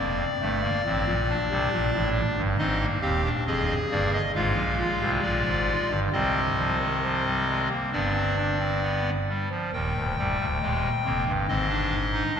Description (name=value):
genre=classical, baroque-style 4-part fugue for pipe organ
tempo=68 BPM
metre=4/4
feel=straight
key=C minor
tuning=A4 = 441 Hz
part: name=pipe organ, clarinet reed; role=solo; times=0.0-12.4 s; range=C1 to G5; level=-23 LUFS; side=equal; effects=none
room=wet cathedral reverb, RT60 4.8 s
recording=heard from further back in the room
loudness=-23 LUFS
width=side -7 dB against mid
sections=0.0-9.7 A section; 9.7-12.4 B section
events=none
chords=0.0 Gm; 0.9 Gmadd9; 2.6 Ab; 4.3 Ddim/Ab; 6.1 Gsus4/C; 7.9 G; 9.7 Cm; 11.5 Ab